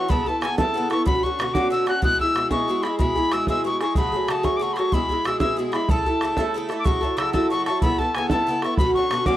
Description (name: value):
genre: celtic folk, Celtic jig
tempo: 124 BPM (dotted quarters)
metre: 6/8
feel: straight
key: A major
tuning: A4 = 440 Hz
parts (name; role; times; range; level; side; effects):
- mellow tin whistle; melody; 0.0-9.4 s; G#5 to F#6; -24 LUFS; left 2 dB; none
- Irish bouzouki; accompaniment; 0.0-9.4 s; B2 to A4; -23 LUFS; equal; none
- bodhran; percussion; 0.1-9.3 s; none; -24 LUFS; right 1 dB; none
room: studio reverb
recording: dry, close 1970s-style studio recording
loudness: -19 LUFS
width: side -13 dB against mid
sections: 0.0-6.9 A section; 6.9-9.4 A section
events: none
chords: 0.1 Aadd9; 1.1 Bmadd9; 2.0 E; 4.0 F#madd9; 4.9 E; 5.9 A; 6.9 F#m7; 7.8 Aadd9; 8.8 Bmadd9